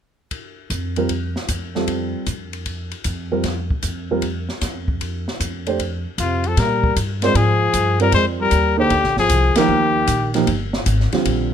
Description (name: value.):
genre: jazz, small-group swing and bop.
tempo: 154 BPM.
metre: 4/4.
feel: swing 67% on 8ths.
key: Bb mixolydian.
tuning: A4 = 439 Hz.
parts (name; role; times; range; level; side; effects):
open jazz drum kit; drums; 0.3-11.4 s; hi-hat, kick drum, ride cymbal, snare drum; -26 LUFS; left 1 dB; none.
upright bass; bass; 0.7-11.5 s; G1 to Bb2; -22 LUFS; equal; none.
dark baby grand piano; accompaniment; 1.0-11.5 s; D3 to D5; -21 LUFS; right 4 dB; none.
breathy trumpet; melody; 6.2-10.4 s; F4 to C5; -18 LUFS; left 6 dB; none.
breathy trombone; second line; 6.2-10.4 s; C3 to Ab3; -24 LUFS; right 4 dB; none.
room: light reverb.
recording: close, detailed microphones.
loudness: -17 LUFS.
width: side -8 dB against mid.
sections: 0.3-6.6 A section; 6.6-11.5 B section.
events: band accent 9.5.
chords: 0.3 Fadd9; 3.4 N.C.; 6.6 Bb13; 9.7 Ebadd9.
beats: | 0.31 0.70 1.10 1.49 | 1.88 2.27 2.66 3.05 | 3.44 3.84 4.23 4.62 | 5.01 5.40 5.79 6.18 | 6.57 6.96 7.35 7.74 | 8.13 8.52 8.91 9.30 | 9.69 10.09 10.48 10.87 | 11.26.